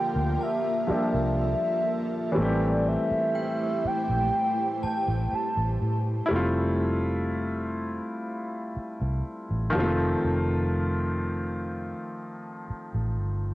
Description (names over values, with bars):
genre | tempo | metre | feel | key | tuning
R&B | 61 BPM | 4/4 | straight | unclear | A4 = 440 Hz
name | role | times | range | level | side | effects
warm velvety synth lead | melody | 0.0-6.1 s | C#5 to A5 | -28 LUFS | right 1 dB | chorus, phaser, cassette tape
clear grand piano | accompaniment | 0.0-13.5 s | D3 to G4 | -28 LUFS | left 1 dB | none
ethereal airy pad | sustained chords | 0.0-6.3 s | A3 to C5 | -35 LUFS | right 1 dB | ensemble chorus, built-in reverb, tremolo
vintage muted fingered electric bass | bass | 0.2-13.5 s | F1 to A2 | -28 LUFS | equal | none
synth chime | texture | 0.4-6.8 s | G5 to A5 | -42 LUFS | right 2 dB | ensemble chorus, tremolo, analog delay
room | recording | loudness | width
light reverb | home recording on cassette | -24 LUFS | side -16 dB against mid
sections
0.0-6.3 A section; 6.3-13.5 B section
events
none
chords
0.0 Bb6; 2.4 Am7; 6.3 Fmaj9; 9.7 F7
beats
0.40 1.39 | 2.37 3.35 4.34 5.32 | 6.31 7.29 8.27 9.26 | 10.24 11.22 12.21 13.19